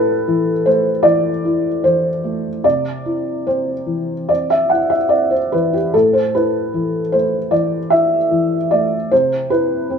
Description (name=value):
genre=neoclassical minimalist piano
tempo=75 BPM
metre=4/4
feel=rubato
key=A minor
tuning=A4 = 441 Hz
part: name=felt-muted upright piano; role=solo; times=0.0-10.0 s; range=A2 to F#5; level=-14 LUFS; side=equal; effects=none
room=moderate stone room reverb, RT60 1.0 s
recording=band playing live in one room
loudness=-14 LUFS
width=side -6 dB against mid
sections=0.0-10.0 A section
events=none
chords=0.0 Amadd9; 2.6 C; 5.9 Asus2; 9.1 C